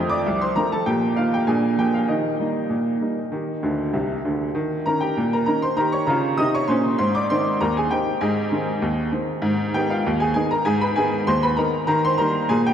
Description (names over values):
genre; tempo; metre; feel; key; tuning
ragtime piano; 98 BPM; 2/4; straight; Eb major; A4 = 440 Hz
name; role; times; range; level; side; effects
clear upright piano; solo; 0.0-12.7 s; C2 to Eb6; -19 LUFS; equal; none
room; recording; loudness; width
wet cathedral reverb, RT60 5.3 s; in a vast, echoing space; -19 LUFS; side -9 dB against mid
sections
0.0-4.6 A section; 4.6-12.7 B section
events
upright piano fill 3.6-4.6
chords
0.0 F7; 0.9 Eb/Bb; 1.5 Bb7; 2.1 Eb; 4.6 Eb7; 7.0 Ab; 9.4 Abm; 11.9 Eb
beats
0.24 | 0.85 1.47 | 2.08 2.70 | 3.32 3.94 | 4.55 5.17 | 5.78 6.39 | 7.00 7.61 | 8.22 8.83 | 9.45 10.06 | 10.66 11.28 | 11.89 12.49